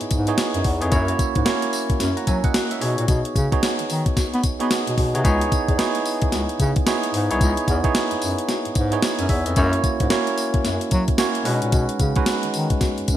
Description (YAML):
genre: R&B, new jack swing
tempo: 111 BPM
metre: 4/4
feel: swing 61% on 16ths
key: C# dorian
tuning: A4 = 440 Hz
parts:
  - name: bell-like tine electric piano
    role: accompaniment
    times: 0.0-13.2 s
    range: G#3 to A#5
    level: -23 LUFS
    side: moving between left 1 dB and right 6 dB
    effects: auto-pan
  - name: warm bass clarinet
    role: bass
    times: 0.0-13.2 s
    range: B#1 to B3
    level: -23 LUFS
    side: left 1 dB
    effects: none
  - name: clean 12-bit digital drum machine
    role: drums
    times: 0.0-13.2 s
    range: hi-hat, kick drum, snare drum, tambourine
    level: -22 LUFS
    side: left 1 dB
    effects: gated reverb
room: light reverb, digital ambience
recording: bright 1980s-style digital production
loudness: -18 LUFS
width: side -12 dB against mid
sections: 0.0-13.2 A section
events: none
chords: 0.0 C#m9; 0.9 F#7; 2.8 B69; 5.2 C#m9; 9.6 F#7; 11.5 B69